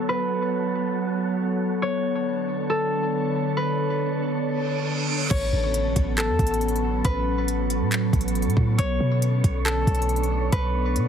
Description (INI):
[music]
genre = hip hop, atmospheric cloud-rap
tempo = 138 BPM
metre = 4/4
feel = half-time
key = A major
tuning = A4 = 441 Hz
[part]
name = concert harp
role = melody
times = 0.0-11.1 s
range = A4 to C#5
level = -28 LUFS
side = left 1 dB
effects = low-pass filter, ping-pong delay
[part]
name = glassy FM pad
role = sustained chords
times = 0.0-11.1 s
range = D3 to C#5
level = -26 LUFS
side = equal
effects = ensemble chorus, built-in reverb, sidechain pumping, low-pass filter
[part]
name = wind-like tuned noise texture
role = texture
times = 0.0-11.1 s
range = A3 to C#5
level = -36 LUFS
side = right 2 dB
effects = built-in reverb
[part]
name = reverse cymbal and impact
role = sound effects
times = 4.6-7.0 s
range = none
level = -32 LUFS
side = right 6 dB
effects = none
[part]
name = clean 808-style bass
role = bass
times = 5.3-11.1 s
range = A1 to B2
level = -24 LUFS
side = equal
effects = none
[part]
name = smooth R&B drum kit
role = drums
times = 5.3-11.1 s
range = crash cymbal, handclaps, hi-hat, kick drum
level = -25 LUFS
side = equal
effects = none
[sound]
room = little or no reverb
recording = heavily compressed radio sound, multiband compression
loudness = -21 LUFS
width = side -8 dB against mid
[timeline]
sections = 0.0-5.3 A section; 5.3-11.1 B section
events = reverse cymbal 4.6-5.3; impact 5.3-7.0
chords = 0.0 A69; 1.8 Bm9; 5.3 A69; 8.8 Bm9